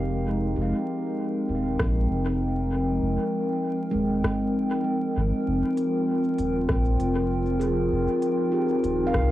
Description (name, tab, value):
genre	ambient dub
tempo	98 BPM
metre	4/4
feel	swing 57% on 16ths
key	F minor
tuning	A4 = 440 Hz
part	warbly tape-like pad	sustained chords	0.0-9.3 s	F3 to G5	-24 LUFS	left 1 dB	chorus, built-in reverb, cassette tape
part	handpan	arpeggios	0.0-9.3 s	Ab3 to F5	-33 LUFS	right 3 dB	cassette tape, tape echo
part	soft dub sub bass	bass	0.0-9.3 s	Eb1 to C2	-27 LUFS	equal	none
part	electronic kick drum	drums	1.8-9.3 s	none	-30 LUFS	equal	small room ambience, cassette tape
part	organic electronic drum kit	drums	1.8-9.3 s	hi-hat, rim click	-32 LUFS	equal	overdrive, small room ambience, cassette tape, dub echo
room	moderate studio reverb, RT60 0.7 s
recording	home recording on cassette, vinyl crackle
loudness	-23 LUFS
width	side -14 dB against mid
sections	0.0-9.3 A section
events	none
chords	0.0 Fm11